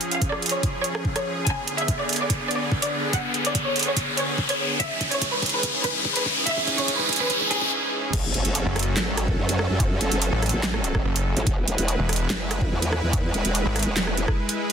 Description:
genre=heavy wobble dubstep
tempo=144 BPM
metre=4/4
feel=half-time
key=F# minor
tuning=A4 = 436 Hz
part: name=clear chamber violin section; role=melody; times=0.0-7.7 s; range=G#4 to G#5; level=-28 LUFS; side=equal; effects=dub echo
part: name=supersaw pad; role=sustained chords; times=0.0-14.7 s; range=G#2 to B4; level=-29 LUFS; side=right 1 dB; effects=sidechain pumping
part: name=dubstep drum kit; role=drums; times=0.0-14.7 s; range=crash cymbal, handclaps, hi-hat, rim click, snare drum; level=-27 LUFS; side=right 1 dB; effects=high-pass filter on hats, studio reverb, soft clipping on snare, high-pass filter on snare, high-pass filter on cymbals
part: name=riser and impact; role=sound effects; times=0.0-9.8 s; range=none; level=-26 LUFS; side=equal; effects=none
part: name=electronic kick drum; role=drums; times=0.2-14.4 s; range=none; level=-26 LUFS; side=equal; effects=overdrive, studio reverb
part: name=growl bass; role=bass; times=8.1-14.3 s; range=E1 to F#2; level=-25 LUFS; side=equal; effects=chorus, overdrive
part: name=snarling distorted saw bass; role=bass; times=8.7-13.8 s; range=E1 to A1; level=-24 LUFS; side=equal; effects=distortion, overdrive
room=moderate plate reverb, RT60 1.7 s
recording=dense, heavily limited modern master, high-pass filter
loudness=-21 LUFS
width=side -7 dB against mid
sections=0.0-8.1 A section; 8.1-14.7 B section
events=build-up 0.0-8.1; riser 0.0-7.7; filter sweep 0.0-8.1; drum fill 1.5-7.7; break 7.7-8.1; drop 8.1-14.7; impact 8.1-9.8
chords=0.0 C#; 1.5 G#dim; 4.8 C#m/G#; 8.1 F#m; 11.5 E

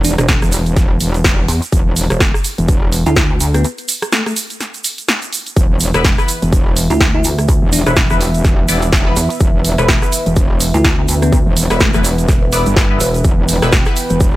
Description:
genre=bass house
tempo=125 BPM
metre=4/4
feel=swing 58% on 16ths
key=E minor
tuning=A4 = 440 Hz
part: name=bell-like FM electric piano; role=melody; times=0.0-12.0 s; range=A3 to E4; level=-21 LUFS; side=equal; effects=chorus, ping-pong delay
part: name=metallic wobble bass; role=bass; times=0.0-14.4 s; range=E1 to G1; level=-16 LUFS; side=equal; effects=distortion, chorus, overdrive, sidechain pumping
part: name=big-room dance drum kit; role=drums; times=0.0-14.3 s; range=hi-hat, rim click, snare drum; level=-18 LUFS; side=equal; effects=none
part: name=egg shaker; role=percussion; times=0.0-14.3 s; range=none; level=-23 LUFS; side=right 5 dB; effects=none
part: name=pulsing pluck wobble bass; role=bass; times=0.2-13.8 s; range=E1 to E2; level=-16 LUFS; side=equal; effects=chorus, overdrive, sidechain pumping
part: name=electronic kick drum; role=drums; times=0.3-14.3 s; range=none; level=-14 LUFS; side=equal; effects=none
part: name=dark analog pad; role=sustained chords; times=5.6-14.4 s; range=E3 to G5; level=-23 LUFS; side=right 2 dB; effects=chorus, sidechain pumping
part: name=band-passed chord stab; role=stabs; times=5.9-14.0 s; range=B3 to D5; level=-21 LUFS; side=left 3 dB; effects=phaser, wide subtle chorus, sidechain pumping, ping-pong delay
room=digital ambience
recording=none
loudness=-11 LUFS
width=side -16 dB against mid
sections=0.0-14.4 A section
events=break 3.6-5.6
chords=0.0 E5

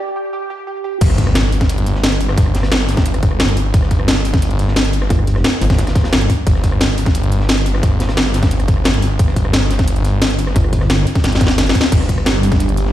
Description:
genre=dark technical drum and bass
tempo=176 BPM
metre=4/4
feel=straight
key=unclear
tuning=A4 = 440 Hz
part: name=soft round pluck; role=arpeggios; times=0.0-1.0 s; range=G4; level=-23 LUFS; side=right 3 dB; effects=ensemble chorus, sidechain pumping, digital delay
part: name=snarling distorted saw bass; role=bass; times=1.0-12.9 s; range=G1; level=-16 LUFS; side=equal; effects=distortion, tube saturation
part: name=crunchy breakbeat drum kit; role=drums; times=1.0-12.9 s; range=hi-hat, snare drum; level=-28 LUFS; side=equal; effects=none
part: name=drum and bass drum kit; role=drums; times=1.0-12.8 s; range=crash cymbal, hi-hat, rim click, snare drum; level=-18 LUFS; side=equal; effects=overdrive, high-pass filter on hats, high-pass filter on snare, high-pass filter on cymbals
part: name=electronic kick drum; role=drums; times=1.0-12.6 s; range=none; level=-14 LUFS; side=equal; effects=overdrive
part: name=impact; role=sound effects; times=1.0-2.4 s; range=none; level=-21 LUFS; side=equal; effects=none
part: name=pulsing pluck wobble bass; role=bass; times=5.1-5.8, 10.6-11.1 s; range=G1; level=-15 LUFS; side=equal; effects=chorus
part: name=sweeping resonant pad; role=sustained chords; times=11.9-12.9 s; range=G3 to G4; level=-21 LUFS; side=right 2 dB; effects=chorus, sidechain pumping
room=digital ambience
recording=played on a big sound system in a bare room, large studio reverb, high-pass filter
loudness=-12 LUFS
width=side -13 dB against mid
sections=0.0-1.0 A section; 1.0-12.9 B section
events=break 0.0-1.0; build-up 0.0-1.0; filter sweep 0.0-1.0; drop 1.0-12.9; impact 1.0-2.4; drum fill 11.2-11.9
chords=0.0 G5

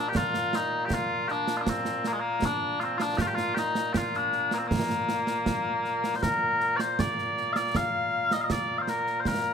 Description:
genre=scottish traditional, Scottish pipe music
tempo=79 BPM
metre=2/4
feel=straight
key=Bb major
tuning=A4 = 440 Hz
part: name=mellow small bagpipes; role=melody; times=0.0-9.5 s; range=Bb2 to F5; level=-26 LUFS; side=left 2 dB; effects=none
part: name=concert snare drum and concert bass drum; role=drums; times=0.1-9.4 s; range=none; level=-31 LUFS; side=right 3 dB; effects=none
room=light reverb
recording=close, detailed microphones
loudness=-25 LUFS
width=side -7 dB against mid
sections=0.0-6.2 A section; 6.2-9.5 B section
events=none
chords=none

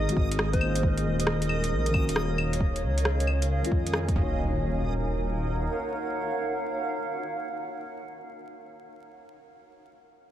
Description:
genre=future garage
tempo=135 BPM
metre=4/4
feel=swing 66% on 16ths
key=Eb dorian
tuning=A4 = 436 Hz
part: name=soft struck synth lead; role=melody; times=0.0-0.8 s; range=C5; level=-38 LUFS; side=left 1 dB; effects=chorus, cassette tape, ping-pong delay
part: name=granular cloud pad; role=sustained chords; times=0.0-8.7 s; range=Ab3 to Gb5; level=-32 LUFS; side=right 2 dB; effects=built-in reverb, sidechain pumping
part: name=dark detuned saw bass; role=bass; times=0.0-5.7 s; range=Eb1 to F2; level=-28 LUFS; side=equal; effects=tube saturation, sidechain pumping
part: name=backwards swelling texture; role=texture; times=0.0-4.4 s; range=Eb5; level=-40 LUFS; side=right 2 dB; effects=built-in reverb
part: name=muted felt-like synth keys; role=accompaniment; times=0.1-9.1 s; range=Eb3 to Db5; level=-34 LUFS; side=left 2 dB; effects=chorus, phaser, vintage 12-bit sampler grit, sidechain pumping, ping-pong delay
part: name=garage drum kit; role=drums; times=0.1-4.1 s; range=claves, hi-hat, rim click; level=-30 LUFS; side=left 1 dB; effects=none
part: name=electronic kick drum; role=drums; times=0.2-4.3 s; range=none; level=-26 LUFS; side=equal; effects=none
part: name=impact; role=sound effects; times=4.2-9.0 s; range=none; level=-34 LUFS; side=equal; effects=none
room=light reverb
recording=vinyl crackle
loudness=-25 LUFS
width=side -11 dB against mid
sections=0.0-4.4 A section; 4.4-7.9 B section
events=none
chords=0.0 Ab7; 0.8 Ebm7; 2.6 Dbadd9; 4.2 Ebm7

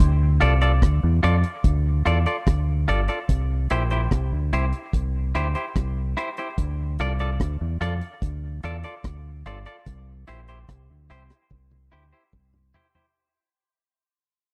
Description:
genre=roots reggae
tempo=73 BPM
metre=4/4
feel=straight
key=D minor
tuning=A4 = 440 Hz
part: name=deep dub fingered electric bass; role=bass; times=0.0-12.7 s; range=G1 to F2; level=-25 LUFS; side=equal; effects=none
part: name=deep reggae drum kit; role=drums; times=0.0-13.1 s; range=hi-hat, kick drum, rim click, toms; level=-24 LUFS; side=equal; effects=none
part: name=semi-hollow electric guitar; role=accompaniment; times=0.4-13.1 s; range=E4 to D5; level=-30 LUFS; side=equal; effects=spring reverb, dub echo
room=little or no reverb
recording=dry, close 1970s-style studio recording, lossy compression artefacts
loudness=-23 LUFS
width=mono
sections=0.0-13.2 A section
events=fade-out 0.0-13.2; drum fill 11.5-13.2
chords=0.0 Dm; 3.3 C; 6.6 Dm; 9.9 C

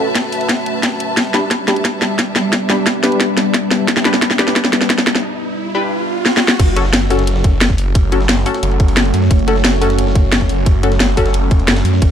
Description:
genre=dark technical drum and bass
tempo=177 BPM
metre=4/4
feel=straight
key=F# phrygian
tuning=A4 = 442 Hz
part: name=deep dark ambient pad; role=sustained chords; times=0.0-12.1 s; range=G3 to D5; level=-22 LUFS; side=equal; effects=chorus, built-in reverb, sidechain pumping
part: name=filtered dub chord stab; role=stabs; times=0.0-12.0 s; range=C#4 to B4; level=-20 LUFS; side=left 2 dB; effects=wide subtle chorus, tape echo
part: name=warm symphonic string section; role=texture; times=0.0-5.2 s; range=G3 to A5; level=-22 LUFS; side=right 1 dB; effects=sidechain pumping
part: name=drum and bass drum kit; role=drums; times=0.2-12.1 s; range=crash cymbal, hi-hat, snare drum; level=-15 LUFS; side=equal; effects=overdrive
part: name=electronic kick drum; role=drums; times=0.2-12.1 s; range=none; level=-14 LUFS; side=equal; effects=overdrive, high-pass filter on kick
part: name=riser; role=sound effects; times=3.6-6.6 s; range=none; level=-25 LUFS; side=right 3 dB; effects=none
part: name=snarling distorted saw bass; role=bass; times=6.6-12.1 s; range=F#1 to F#2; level=-16 LUFS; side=equal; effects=distortion, tube saturation, sidechain pumping
part: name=breakbeat sampler-style drum kit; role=drums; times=6.6-12.1 s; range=ride cymbal, snare drum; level=-30 LUFS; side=right 1 dB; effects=none
room=light reverb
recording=dark, warm production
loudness=-12 LUFS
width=side -9 dB against mid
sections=0.0-6.6 A section; 6.6-12.1 B section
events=build-up 0.0-6.6; drum fill 0.0-5.2, 6.3-6.6; filter sweep on synth stab 0.0-6.6; riser 3.6-6.6; break 5.2-6.6; drop 6.6-12.1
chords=0.0 F#m; 1.2 G; 6.6 F#m

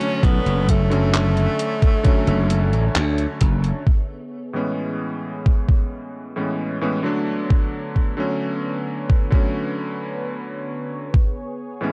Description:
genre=vaporwave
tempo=66 BPM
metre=4/4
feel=straight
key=A major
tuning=A4 = 440 Hz
part: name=bright tenor saxophone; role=melody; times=0.0-3.4 s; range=A3 to C#4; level=-29 LUFS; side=equal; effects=tape echo
part: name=clear electric grand piano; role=accompaniment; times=0.0-11.9 s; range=A2 to D4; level=-27 LUFS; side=equal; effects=subtle chorus, tape echo
part: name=lush unison pad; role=sustained chords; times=0.0-11.9 s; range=D3 to A5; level=-34 LUFS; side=equal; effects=chorus
part: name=detuned 8-bit digital drum machine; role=drums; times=0.0-3.8 s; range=handclaps, hi-hat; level=-29 LUFS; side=equal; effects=none
part: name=glassy slap bass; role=bass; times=0.2-3.7 s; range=F#1 to D2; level=-21 LUFS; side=equal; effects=none
part: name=electronic kick drum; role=drums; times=0.2-11.3 s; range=none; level=-19 LUFS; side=equal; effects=none
room=digital ambience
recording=dry, gritty hardware recording, cassette tape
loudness=-21 LUFS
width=mono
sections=0.0-3.9 A section; 3.9-11.9 B section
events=filter sweep on analog synth pad 3.9-11.9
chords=0.0 Bm9 (rootless); 3.9 Amaj9; 7.0 Bm9; 11.1 Amaj9

